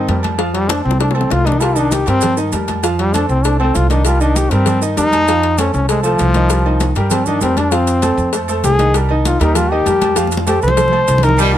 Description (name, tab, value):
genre	latin, salsa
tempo	196 BPM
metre	4/4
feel	straight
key	unclear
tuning	A4 = 439 Hz
part	bright trombone	melody	0.0-11.4 s	F3 to C5	-16 LUFS	left 2 dB	none
part	clear grand piano	accompaniment	0.0-11.6 s	Eb3 to F5	-20 LUFS	equal	none
part	upright bass	bass	0.0-11.6 s	C2 to G2	-17 LUFS	right 1 dB	none
part	congas	percussion	0.1-11.6 s	none	-24 LUFS	equal	none
part	cowbell and bongos	percussion	0.1-11.4 s	none	-24 LUFS	left 7 dB	none
part	timbales and agogo bells	percussion	0.1-11.6 s	none	-25 LUFS	right 8 dB	none
part	maracas	percussion	1.6-11.5 s	none	-28 LUFS	right 7 dB	none
part	brilliant trombone section	melody	11.4-11.6 s	Bb2 to Bb3	-14 LUFS	right 1 dB	none
part	edgy saxophone section	second line	11.4-11.6 s	Eb3	-19 LUFS	left 1 dB	none
room	little or no reverb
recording	close, detailed microphones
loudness	-12 LUFS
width	side -11 dB against mid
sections	0.0-11.4 A section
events	trombone solo 0.0-11.4; drum fill 0.7-1.6, 10.2-11.4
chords	0.4 F7; 1.6 Cm7; 2.8 F7; 4.1 Cm7; 5.3 F7; 6.5 Cm7; 7.7 F7; 8.9 Cm7; 10.2 F7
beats	0.08 | 0.39 0.70 1.00 1.31 | 1.61 1.92 2.23 2.53 | 2.84 3.14 3.45 3.75 | 4.06 4.37 4.67 4.98 | 5.28 5.59 5.89 6.20 | 6.50 6.81 7.12 7.42 | 7.73 8.03 8.34 8.64 | 8.95 9.25 9.56 9.86 | 10.17 10.47 10.78 11.08 | 11.39